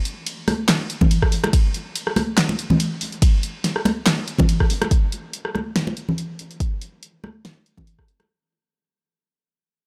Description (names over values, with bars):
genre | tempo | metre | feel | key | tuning
dubstep | 142 BPM | 4/4 | swing 54% on 16ths, half-time | none | none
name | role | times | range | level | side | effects
deep house drum kit | drums | 0.1-8.3 s | handclaps, hi-hat, ride cymbal, rim click, snare drum | -25 LUFS | equal | none
congas | percussion | 0.5-8.3 s | none | -25 LUFS | equal | dub echo
electronic kick drum | drums | 1.0-8.1 s | none | -20 LUFS | equal | none
room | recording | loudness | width
little or no reverb | dry, gritty hardware recording | -21 LUFS | mono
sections
0.0-4.9 A section; 4.9-8.3 B section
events
drop 0.0-4.9; fade-out 4.9-8.3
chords
none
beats
0.26 0.69 1.11 | 1.53 1.96 2.38 2.80 | 3.22 3.65 4.07 4.49 | 4.91 5.33 5.76 6.18 | 6.60 7.03 7.45 7.87